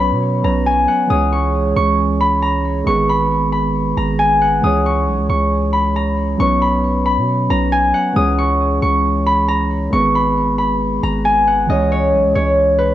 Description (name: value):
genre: hip hop, trap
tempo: 136 BPM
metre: 4/4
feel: half-time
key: C# dorian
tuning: A4 = 441 Hz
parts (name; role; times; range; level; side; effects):
- Celtic harp; melody; 0.0-12.9 s; B4 to D#6; -16 LUFS; left 1 dB; cassette tape
- muted felt-like synth keys; accompaniment; 0.0-12.9 s; D#3 to C#5; -19 LUFS; right 2 dB; chorus, cassette tape
- long sustained 808-style bass; bass; 0.0-12.9 s; G#1 to B2; -20 LUFS; equal; none
room: small room ambience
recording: home recording on cassette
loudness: -13 LUFS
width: side -12 dB against mid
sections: 0.0-11.7 A section; 11.7-12.9 B section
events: none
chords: 0.0 Bsus2; 1.1 C#m; 2.9 G#m; 4.6 C#m; 6.4 Bsus2; 8.2 C#m; 9.9 G#m; 11.7 C#m